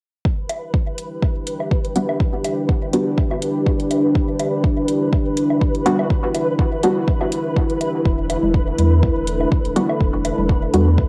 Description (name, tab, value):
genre	dub techno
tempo	123 BPM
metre	4/4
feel	swing 55% on 16ths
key	E minor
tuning	A4 = 440 Hz
part	dark analog pad	sustained chords	1.1-11.1 s	D4 to A4	-24 LUFS	equal	chorus, sidechain pumping, cassette tape
part	electronic kick drum	drums	0.2-11.1 s	none	-21 LUFS	equal	overdrive, studio reverb, cassette tape
part	flickering grainy texture	texture	0.2-11.1 s	B4	-29 LUFS	equal	built-in reverb, sidechain pumping, cassette tape
part	electronic hi-hat	drums	0.5-10.8 s	none	-35 LUFS	equal	overdrive, studio reverb, cassette tape
part	woodblock and congas	percussion	0.5-10.8 s	none	-31 LUFS	equal	sidechain pumping on perc, studio reverb, cassette tape, dub echo
part	filtered dub chord stab	stabs	2.0-10.9 s	G3 to F#4	-24 LUFS	equal	chorus, phaser, sidechain pumping, cassette tape, dub echo
part	warm sub bass	bass	8.1-11.0 s	E1 to E2	-21 LUFS	equal	sidechain pumping
room	little or no reverb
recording	home recording on cassette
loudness	-19 LUFS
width	mono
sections	0.2-11.1 A section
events	filter sweep on synth stab 0.2-11.1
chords	0.2 Em7